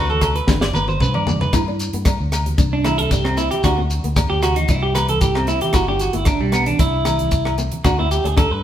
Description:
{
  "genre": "highlife guitar band",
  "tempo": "114 BPM",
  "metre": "4/4",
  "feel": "straight",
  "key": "G major",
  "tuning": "A4 = 439 Hz",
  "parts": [
    { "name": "flamenco guitar", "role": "accompaniment", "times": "0.0-8.6 s", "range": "F#3 to E4", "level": "-27 LUFS", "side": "left 4 dB", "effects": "none" },
    { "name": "clean electric guitar", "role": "arpeggios", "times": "0.0-8.6 s", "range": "G3 to D5", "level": "-20 LUFS", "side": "right 2 dB", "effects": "spring reverb" },
    { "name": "fingered electric bass", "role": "bass", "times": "0.0-8.6 s", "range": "G1 to G2", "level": "-22 LUFS", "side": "equal", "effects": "none" },
    { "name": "congas", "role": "percussion", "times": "0.1-7.8 s", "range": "none", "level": "-29 LUFS", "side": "right 2 dB", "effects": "none" },
    { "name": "shekere", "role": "percussion", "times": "0.1-8.5 s", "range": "none", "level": "-29 LUFS", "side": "left 1 dB", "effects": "none" },
    { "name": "tight funk drum kit", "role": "drums", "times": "0.2-8.5 s", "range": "hi-hat, kick drum, rim click, snare drum, toms", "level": "-21 LUFS", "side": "equal", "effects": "none" },
    { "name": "agogo bells", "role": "percussion", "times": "0.2-8.5 s", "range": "none", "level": "-28 LUFS", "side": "left 4 dB", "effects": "none" }
  ],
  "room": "moderate stone room reverb, RT60 1.1 s",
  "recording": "band playing live in one room",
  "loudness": "-16 LUFS",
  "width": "side -10 dB against mid",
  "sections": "0.0-1.5 A section; 1.5-8.6 B section",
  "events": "drum fill 0.5-1.5; clean electric guitar solo 1.5-8.6",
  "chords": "0.5 G; 1.5 G5; 2.6 Cadd9; 3.6 D7b9; 4.7 C; 5.7 G; 6.8 C; 7.8 D"
}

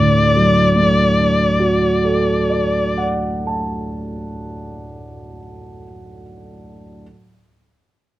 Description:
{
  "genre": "classical, impressionist duo for violin and grand piano",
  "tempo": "66 BPM",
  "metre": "3/4",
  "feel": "rubato",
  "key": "D major",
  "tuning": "A4 = 439 Hz",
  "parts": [
    { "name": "warm violin", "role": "melody", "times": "0.0-3.0 s", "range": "D5", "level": "-18 LUFS", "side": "left 2 dB", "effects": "none" },
    { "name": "dark baby grand piano", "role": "accompaniment", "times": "0.0-7.0 s", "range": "D2 to A5", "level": "-18 LUFS", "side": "right 1 dB", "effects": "none" }
  ],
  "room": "light reverb",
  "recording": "worn, warbling old tape, cassette tape, warbly pitch drift",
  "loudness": "-14 LUFS",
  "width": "side -15 dB against mid",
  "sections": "0.0-4.8 A section",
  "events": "none",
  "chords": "0.0 D"
}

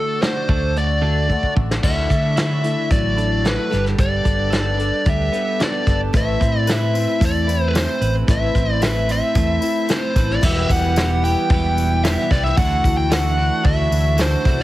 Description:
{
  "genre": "folk rock and heartland rock",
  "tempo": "112 BPM",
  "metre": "4/4",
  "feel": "straight",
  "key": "unclear",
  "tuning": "A4 = 440 Hz",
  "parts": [
    { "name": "biting lead guitar", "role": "melody", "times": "0.0-14.6 s", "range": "A4 to G5", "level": "-22 LUFS", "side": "equal", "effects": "overdrive" },
    { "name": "picked twelve-string acoustic guitar", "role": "accompaniment", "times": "0.0-14.6 s", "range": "E2 to B4", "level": "-27 LUFS", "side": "left 7 dB", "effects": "none" },
    { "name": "accordion", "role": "sustained chords", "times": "0.0-14.6 s", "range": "B3 to D5", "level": "-35 LUFS", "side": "right 2 dB", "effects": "none" },
    { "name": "twelve-string electric guitar", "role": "riff", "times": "0.0-14.6 s", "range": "E2 to B4", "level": "-25 LUFS", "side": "right 6 dB", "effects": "none" },
    { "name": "soft brush drum kit", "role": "drums", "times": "0.2-14.6 s", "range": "crash cymbal, hi-hat, kick drum, snare drum", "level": "-20 LUFS", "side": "equal", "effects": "none" },
    { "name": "hollow-body short-scale fingered electric bass", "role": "bass", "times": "0.5-14.6 s", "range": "E1 to D3", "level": "-20 LUFS", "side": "equal", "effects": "none" },
    { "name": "tambourine", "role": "percussion", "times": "6.1-14.5 s", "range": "none", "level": "-37 LUFS", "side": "left 4 dB", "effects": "none" }
  ],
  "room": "little or no reverb",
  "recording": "heavily compressed radio sound",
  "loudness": "-16 LUFS",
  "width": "side -15 dB against mid",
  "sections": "0.0-1.8 A section; 1.8-10.4 B section; 10.4-14.6 C section",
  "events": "drum fill 1.3-1.8",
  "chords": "0.0 D; 1.8 Dadd9; 3.7 Gadd9; 6.1 Amadd9; 10.4 Em; 12.6 Dadd9"
}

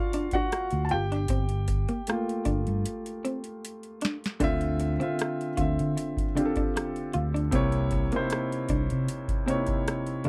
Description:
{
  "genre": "R&B, neo-soul",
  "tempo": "77 BPM",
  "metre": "4/4",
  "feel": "swing 53% on 16ths",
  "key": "D minor",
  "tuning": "A4 = 442 Hz",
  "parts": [
    { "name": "warm concert grand piano", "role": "accompaniment", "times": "0.0-10.3 s", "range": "C3 to A5", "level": "-32 LUFS", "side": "equal", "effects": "none" },
    { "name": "vintage hollow-body jazz guitar", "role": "second line", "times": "0.1-10.3 s", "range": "Bb3 to F4", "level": "-34 LUFS", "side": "equal", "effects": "none" },
    { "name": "booming analog drum machine", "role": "drums", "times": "0.1-10.3 s", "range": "hi-hat, kick drum, rim click, snare drum", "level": "-34 LUFS", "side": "equal", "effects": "none" },
    { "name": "fingered electric bass", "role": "bass", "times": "0.7-10.3 s", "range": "G1 to D3", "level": "-31 LUFS", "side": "equal", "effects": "none" }
  ],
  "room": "light reverb",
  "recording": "dry, close 1970s-style studio recording",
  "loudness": "-28 LUFS",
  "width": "mono",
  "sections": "0.0-4.4 A section; 4.4-10.3 A section",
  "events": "grand piano solo 0.0-4.4; drum fill 2.8-4.4",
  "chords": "0.0 D7alt; 0.9 Gm9; 4.4 Dm9; 7.5 C7b9"
}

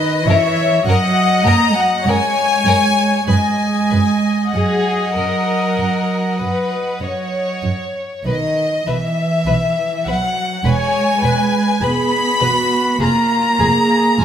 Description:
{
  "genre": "classical, slow romantic movement for string orchestra",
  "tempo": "48-52 BPM",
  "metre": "4/4",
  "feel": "rubato",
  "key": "B major",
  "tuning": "A4 = 440 Hz",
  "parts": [
    { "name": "warm chamber violin section", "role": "second line", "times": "0.0-14.2 s", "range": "D#5 to B5", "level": "-18 LUFS", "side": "left 3 dB", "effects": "none" },
    { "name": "rich symphonic viola section", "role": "accompaniment", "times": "0.0-14.2 s", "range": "F4 to D#5", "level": "-22 LUFS", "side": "left 1 dB", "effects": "none" },
    { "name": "warm chamber cello section", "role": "bass", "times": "0.0-14.2 s", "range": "D#3 to B3", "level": "-20 LUFS", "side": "right 3 dB", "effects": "none" },
    { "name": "warm chamber violin section", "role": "melody", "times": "0.3-14.2 s", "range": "G#4 to C#5", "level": "-24 LUFS", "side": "left 2 dB", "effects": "none" },
    { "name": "dark chamber double bass section", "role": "bass", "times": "0.3-14.2 s", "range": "E1 to F#2", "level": "-20 LUFS", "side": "right 3 dB", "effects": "none" }
  ],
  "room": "moderate scoring stage reverb, RT60 1.8 s",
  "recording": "none",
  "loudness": "-14 LUFS",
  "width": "side -9 dB against mid",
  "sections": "0.0-14.2 A section",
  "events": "none",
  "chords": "0.0 F#; 3.3 B/F# (rootless); 5.8 F#; 8.3 B (rootless); 10.6 E; 13.0 Fmadd11"
}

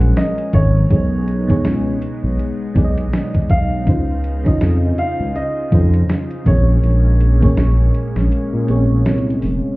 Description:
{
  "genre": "contemporary R&B",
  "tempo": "81 BPM",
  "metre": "4/4",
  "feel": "swing 58% on 16ths",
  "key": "unclear",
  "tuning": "A4 = 438 Hz",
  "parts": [
    { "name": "clear baby grand piano", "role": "melody", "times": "0.0-9.4 s", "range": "Db5 to Gb5", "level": "-26 LUFS", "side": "right 1 dB", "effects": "none" },
    { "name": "FM electric piano", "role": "accompaniment", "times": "0.0-9.8 s", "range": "Bb2 to Eb5", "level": "-21 LUFS", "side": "right 1 dB", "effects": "chorus" },
    { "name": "lush unison pad", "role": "sustained chords", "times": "0.0-9.8 s", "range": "Db3 to C5", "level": "-26 LUFS", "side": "left 1 dB", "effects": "chorus, sidechain pumping" },
    { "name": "smooth synth bass", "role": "bass", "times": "0.0-9.6 s", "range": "F1 to Bb2", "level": "-15 LUFS", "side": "equal", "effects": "none" },
    { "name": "crisp 8-bit digital drum machine", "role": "drums", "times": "0.0-9.6 s", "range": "hi-hat, kick drum, snare drum", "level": "-17 LUFS", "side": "equal", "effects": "overdrive" }
  ],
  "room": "little or no reverb",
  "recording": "heard muffled through a wall, club ambience, EQ",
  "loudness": "-14 LUFS",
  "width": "side -21 dB against mid",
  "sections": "0.0-9.8 A section",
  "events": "break 8.3-9.8",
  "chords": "0.0 Gbmaj9; 0.9 Cb69; 3.9 Dbmaj9; 6.5 Bbm9"
}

